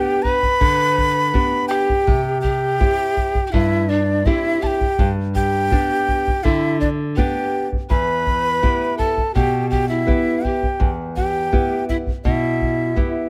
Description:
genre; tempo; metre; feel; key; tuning
andean folk, Andean ensemble; 82 BPM; 4/4; straight; E minor; A4 = 441 Hz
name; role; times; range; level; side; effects
breathy large quena; melody; 0.0-13.3 s; D5 to B5; -24 LUFS; equal; none
bright polished pan flute; second line; 0.0-13.3 s; D4 to B4; -25 LUFS; equal; none
nylon-string guitar; accompaniment; 0.0-13.3 s; E2 to G4; -25 LUFS; equal; none
bombo; percussion; 0.2-13.1 s; none; -23 LUFS; equal; none
room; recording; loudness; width
light reverb; close, detailed microphones; -19 LUFS; mono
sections
0.0-13.3 A section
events
none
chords
0.0 G; 2.1 C; 5.0 G; 7.9 Em

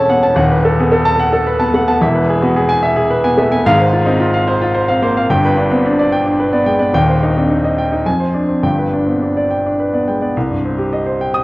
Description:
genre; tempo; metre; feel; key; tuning
classical, virtuoso piano study; 109 BPM; 3/4; rubato; E major, C minor from 3.7 s; A4 = 440 Hz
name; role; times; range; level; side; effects
warm baby grand piano; solo; 0.0-11.4 s; D#1 to Eb6; -12 LUFS; equal; none
room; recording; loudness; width
moderate recital hall reverb, RT60 1.8 s; worn, warbling old tape, cassette tape, warbly pitch drift; -12 LUFS; side -20 dB against mid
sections
0.0-10.4 A section; 10.4-11.4 B section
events
none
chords
0.4 B7/D#; 2.0 E; 3.7 Fm/Ab; 5.3 G; 6.9 Cm/Eb; 8.1 Dm7b5/F; 8.6 G; 10.4 Cm

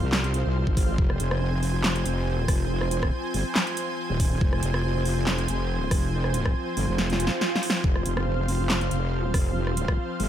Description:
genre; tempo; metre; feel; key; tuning
heavy wobble dubstep; 140 BPM; 4/4; swing 53% on 16ths, half-time; F minor; A4 = 438 Hz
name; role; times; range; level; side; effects
lush unison pad; sustained chords; 0.0-10.3 s; F3 to Ab5; -30 LUFS; equal; chorus, sidechain pumping
wobble bass; bass; 0.0-10.3 s; Eb1 to C2; -26 LUFS; equal; chorus, overdrive
big-room dance drum kit; drums; 0.1-10.3 s; handclaps, hi-hat, rim click, snare drum; -28 LUFS; equal; studio reverb
electronic kick drum; drums; 0.7-10.0 s; none; -24 LUFS; equal; overdrive, studio reverb
swell; sound effects; 7.1-7.8 s; none; -33 LUFS; right 2 dB; none
room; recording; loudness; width
little or no reverb; none; -23 LUFS; side -10 dB against mid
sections
0.0-10.3 A section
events
drum fill 7.0-7.8; swell 7.1-7.8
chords
0.0 F5

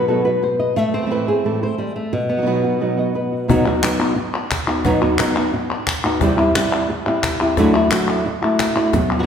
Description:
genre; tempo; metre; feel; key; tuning
flamenco; 176 BPM; 4/4; straight; B phrygian dominant; A4 = 440 Hz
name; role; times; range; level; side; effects
flamenco guitar; melody; 0.0-9.3 s; B2 to E5; -18 LUFS; left 1 dB; none
flamenco guitar; stabs; 0.0-9.3 s; A2 to F#4; -23 LUFS; right 3 dB; none
cajon; percussion; 3.5-9.1 s; none; -24 LUFS; left 2 dB; none
palmas hand claps; percussion; 3.7-9.3 s; none; -23 LUFS; left 2 dB; none
room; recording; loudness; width
wet recital hall reverb, RT60 1.7 s; recorded in a church or concert hall; -16 LUFS; side -8 dB against mid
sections
0.0-3.5 A section; 3.5-9.3 B section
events
nylon-string guitar solo 0.0-3.5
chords
0.0 B; 0.8 Am; 2.1 B; 6.2 C; 7.6 Dadd9

